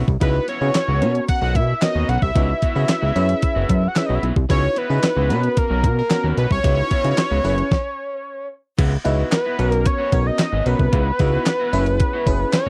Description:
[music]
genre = early-eighties boogie funk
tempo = 112 BPM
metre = 4/4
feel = straight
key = C# dorian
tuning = A4 = 440 Hz
[part]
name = electric guitar at the edge of break-up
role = riff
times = 0.0-12.7 s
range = B3 to F#4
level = -34 LUFS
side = equal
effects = subtle chorus
[part]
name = fat analog bass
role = bass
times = 0.0-12.7 s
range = F#1 to C#3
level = -22 LUFS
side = equal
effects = none
[part]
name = crisp 8-bit digital drum machine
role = drums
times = 0.1-12.7 s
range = crash cymbal, handclaps, hi-hat, kick drum, snare drum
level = -22 LUFS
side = equal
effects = overdrive
[part]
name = fat analog lead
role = melody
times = 0.2-12.7 s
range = A#4 to F#5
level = -25 LUFS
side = equal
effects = slapback echo
[part]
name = FM electric piano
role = accompaniment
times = 0.2-12.6 s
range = B3 to B4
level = -29 LUFS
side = equal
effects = chorus, phaser
[sound]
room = little or no reverb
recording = dry, close 1970s-style studio recording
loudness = -19 LUFS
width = mono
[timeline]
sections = 0.0-8.8 A section; 8.8-12.7 B section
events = stop 7.7-8.8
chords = 0.2 C#m11; 1.0 Bmaj9; 2.4 C#m11; 3.2 F#7sus4; 4.5 C#m11; 5.3 Bmaj9; 6.6 C#m11; 7.4 F#7sus4; 8.8 C#m11; 9.6 G#m11/B; 10.9 C#m11; 11.7 F#7sus4

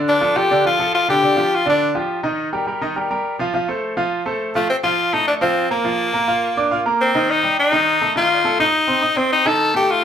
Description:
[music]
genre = latin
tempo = 208 BPM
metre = 4/4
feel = straight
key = unclear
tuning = A4 = 439 Hz
[part]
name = bright concert grand piano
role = accompaniment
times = 0.0-10.0 s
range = D3 to F6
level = -20 LUFS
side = right 2 dB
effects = none
[part]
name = raspy tenor saxophone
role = melody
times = 0.1-1.9, 4.6-10.0 s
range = A3 to A4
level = -16 LUFS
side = left 2 dB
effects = plate reverb
[sound]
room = wet small room reverb, RT60 0.5 s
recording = heard from further back in the room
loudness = -16 LUFS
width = side -8 dB against mid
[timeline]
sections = 0.0-4.7 A section; 4.7-10.0 B section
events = none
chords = 0.1 Dmadd11; 1.2 G5; 2.4 Eb; 3.5 F; 4.7 Fadd11; 5.8 Bb/F; 7.0 Cm7; 8.2 F7

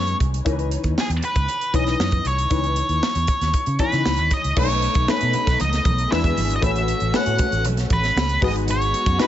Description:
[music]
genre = polished 1980s jazz-funk pop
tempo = 117 BPM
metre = 4/4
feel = straight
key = C# minor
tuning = A4 = 438 Hz
[part]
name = octave-fuzz lead guitar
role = melody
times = 0.0-9.3 s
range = G#4 to F#5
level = -23 LUFS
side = equal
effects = distortion
[part]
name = warm baby grand piano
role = accompaniment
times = 0.0-9.3 s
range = E3 to C#5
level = -26 LUFS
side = left 5 dB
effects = ensemble chorus
[part]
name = vintage muted fingered electric bass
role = bass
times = 0.0-9.2 s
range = G#1 to C#3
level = -23 LUFS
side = equal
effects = none
[part]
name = crisp fusion drum kit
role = drums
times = 0.1-9.3 s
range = crash cymbal, hi-hat, kick drum, snare drum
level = -24 LUFS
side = right 1 dB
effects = none
[part]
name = warm studio string section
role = sustained chords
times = 4.6-9.3 s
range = E3 to G#4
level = -31 LUFS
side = right 2 dB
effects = none
[part]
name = congas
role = percussion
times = 4.6-9.1 s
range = none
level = -33 LUFS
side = right 3 dB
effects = none
[sound]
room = small room ambience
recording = nothing above 7.7 kHz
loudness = -18 LUFS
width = side -12 dB against mid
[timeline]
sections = 0.0-4.6 A section; 4.6-9.3 B section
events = none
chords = 0.5 C#m9; 4.6 B9; 6.1 E7; 6.6 A69; 8.4 G#m7

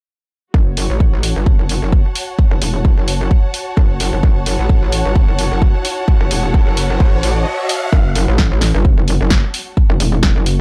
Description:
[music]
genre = bass house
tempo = 130 BPM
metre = 4/4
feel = swing 55% on 16ths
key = F# minor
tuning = A4 = 440 Hz
[part]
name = metallic wobble bass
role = bass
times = 0.5-10.6 s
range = E1 to A1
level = -19 LUFS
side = equal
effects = chorus, sidechain pumping
[part]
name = electronic kick drum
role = drums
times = 0.5-10.3 s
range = none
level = -15 LUFS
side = equal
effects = studio reverb
[part]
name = warm studio string section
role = texture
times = 0.5-10.6 s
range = F#4 to A5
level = -27 LUFS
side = equal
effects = sidechain pumping
[part]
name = house drum kit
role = drums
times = 0.8-10.6 s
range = hi-hat, snare drum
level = -23 LUFS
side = equal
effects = studio reverb
[part]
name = riser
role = sound effects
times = 5.7-7.9 s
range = none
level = -29 LUFS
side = equal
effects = none
[sound]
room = digital ambience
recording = dark, warm production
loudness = -15 LUFS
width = mono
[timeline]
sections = 0.5-7.9 A section; 7.9-10.6 B section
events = riser 5.7-7.9; break 7.5-7.9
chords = 0.5 F#m

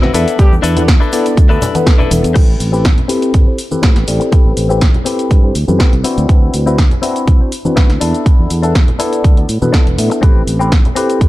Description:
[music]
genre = filtered disco house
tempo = 122 BPM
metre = 4/4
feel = swing 53% on 16ths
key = A dorian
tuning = A4 = 441 Hz
[part]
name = tine electric piano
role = accompaniment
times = 0.0-11.3 s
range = B3 to E5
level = -18 LUFS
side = left 1 dB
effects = overdrive, phaser, vintage 12-bit sampler grit, sidechain pumping, low-pass filter
[part]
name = direct-recorded clean electric guitar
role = riff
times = 0.0-11.3 s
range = C4 to B4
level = -21 LUFS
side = left 6 dB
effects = vintage 12-bit sampler grit, sidechain pumping, low-pass filter
[part]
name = fingered electric bass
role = bass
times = 0.0-11.3 s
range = E1 to B2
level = -16 LUFS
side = equal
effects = tube saturation, sidechain pumping, low-pass filter
[part]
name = punchy analog drum machine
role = drums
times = 0.0-11.3 s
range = cabasa, crash cymbal, hi-hat, snare drum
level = -20 LUFS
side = equal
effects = sidechain pumping on hats, sidechain pumping on perc, sidechain pumping on cymbals
[part]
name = congas and egg shaker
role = percussion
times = 0.0-11.3 s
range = none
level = -22 LUFS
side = left 2 dB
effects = sidechain pumping on perc, low-pass filter on perc
[part]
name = warm horn section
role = melody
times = 0.4-0.5 s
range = G3 to G4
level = -24 LUFS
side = left 1 dB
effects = sidechain pumping, low-pass filter, digital delay
[part]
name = electronic kick drum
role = drums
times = 0.4-11.3 s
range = none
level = -9 LUFS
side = equal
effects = none
[sound]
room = digital ambience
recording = dark, warm production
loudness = -9 LUFS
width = side -17 dB against mid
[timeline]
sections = 0.0-2.4 A section; 2.4-11.3 B section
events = drop 0.0-2.4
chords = 0.1 E7sus4; 2.4 Am9; 6.0 D13; 8.0 E7sus4; 10.2 Am9

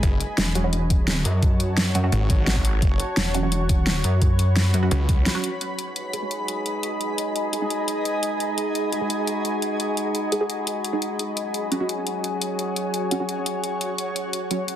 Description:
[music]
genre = dark technical drum and bass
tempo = 172 BPM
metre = 4/4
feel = straight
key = G# phrygian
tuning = A4 = 441 Hz
[part]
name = snarling distorted saw bass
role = bass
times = 0.0-5.3 s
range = F#1 to C#2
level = -22 LUFS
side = equal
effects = distortion, tube saturation, sidechain pumping
[part]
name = dubstep drum kit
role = drums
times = 0.0-14.8 s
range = hi-hat, snare drum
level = -26 LUFS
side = equal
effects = overdrive
[part]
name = electronic kick drum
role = drums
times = 0.0-5.2 s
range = none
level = -21 LUFS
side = equal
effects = overdrive
[part]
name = granular cloud pad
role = texture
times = 0.0-14.8 s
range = F#4 to B5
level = -29 LUFS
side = equal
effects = built-in reverb, sidechain pumping
[part]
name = pulsing pluck wobble bass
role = bass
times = 0.4-4.9 s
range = E1 to F#2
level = -21 LUFS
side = equal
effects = chorus
[part]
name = filtered dub chord stab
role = stabs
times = 0.6-14.6 s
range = F#3 to G#4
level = -29 LUFS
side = right 2 dB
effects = phaser, lush chorus, tape echo
[part]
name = metallic inharmonic drone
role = sustained chords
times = 6.1-14.8 s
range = F#3 to G#4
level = -28 LUFS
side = equal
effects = chorus, built-in reverb, sidechain pumping
[sound]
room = light reverb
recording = dense, heavily limited modern master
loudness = -21 LUFS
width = side -11 dB against mid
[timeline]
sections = 0.0-5.6 A section; 5.6-14.8 B section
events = filter sweep on synth stab 0.0-5.6, 5.6-14.8; break 5.3-5.6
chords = 0.0 F#m; 5.6 G#m; 11.2 F#5

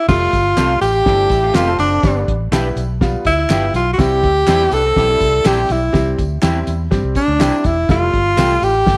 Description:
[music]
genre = uptempo 1960s-style soul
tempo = 123 BPM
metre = 4/4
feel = straight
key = C major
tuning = A4 = 440 Hz
[part]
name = breathy tenor saxophone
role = melody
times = 0.0-9.0 s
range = D4 to A4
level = -17 LUFS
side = equal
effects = slapback echo
[part]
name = warm upright piano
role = accompaniment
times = 0.1-9.0 s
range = G3 to G4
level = -26 LUFS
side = equal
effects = none
[part]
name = vintage muted fingered electric bass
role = bass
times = 0.1-9.0 s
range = E1 to G2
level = -22 LUFS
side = equal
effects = none
[part]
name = cloth-damped thuddy drum kit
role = drums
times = 0.1-9.0 s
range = crash cymbal, hi-hat, kick drum, snare drum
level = -20 LUFS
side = equal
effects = none
[part]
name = tambourine and handclaps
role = percussion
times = 0.1-9.0 s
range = none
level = -35 LUFS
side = equal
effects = none
[part]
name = electric guitar through a small old amp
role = stabs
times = 0.6-8.5 s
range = C4 to G5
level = -26 LUFS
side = equal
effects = none
[part]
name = electric guitar through a small old amp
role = riff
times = 1.1-5.8 s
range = F3 to B4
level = -29 LUFS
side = equal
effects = none
[sound]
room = light reverb, studio ambience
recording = none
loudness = -15 LUFS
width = mono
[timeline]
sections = 0.1-9.0 A section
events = none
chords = 0.1 Fadd9; 2.0 G; 4.0 C; 7.9 Fadd9

